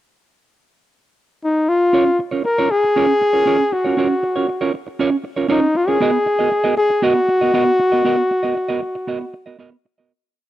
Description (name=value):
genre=disco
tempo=118 BPM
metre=4/4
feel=straight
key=F# major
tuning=A4 = 440 Hz
part: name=breathy flugelhorn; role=melody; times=1.4-9.6 s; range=D#4 to A#4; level=-16 LUFS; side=left 1 dB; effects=none
part: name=semi-hollow electric guitar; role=accompaniment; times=1.9-10.1 s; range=B3 to D#5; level=-20 LUFS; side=right 4 dB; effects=none
room=studio ambience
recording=dry, close 1970s-style studio recording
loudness=-15 LUFS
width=side -14 dB against mid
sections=0.0-1.9 pickup bar; 1.9-10.1 groove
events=fade-out 8.1-10.1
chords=0.0 N.C.; 1.9 F#maj7; 6.0 G#m9